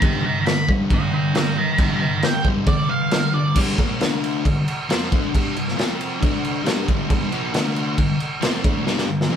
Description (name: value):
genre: garage rock duo or trio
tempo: 136 BPM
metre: 4/4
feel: straight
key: unclear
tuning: A4 = 440 Hz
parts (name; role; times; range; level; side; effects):
- octave-fuzz lead guitar; melody; 0.0-3.6 s; B4 to B5; -23 LUFS; right 3 dB; distortion
- fuzz guitar; riff; 0.0-9.4 s; G2 to G4; -22 LUFS; left 1 dB; distortion
- raw garage drum kit; drums; 0.0-9.4 s; crash cymbal, kick drum, snare drum, toms; -21 LUFS; equal; none
room: moderate studio reverb, RT60 0.8 s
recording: band playing live in one room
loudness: -18 LUFS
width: side -8 dB against mid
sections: 0.0-3.6 A section; 3.6-9.4 B section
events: lead electric guitar solo 0.0-3.6; drum fill 8.9-9.4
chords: 0.0 G; 3.6 G5; 4.0 D5; 4.5 G5; 5.8 F5; 6.2 D5; 6.7 G5; 7.5 D5; 8.0 G5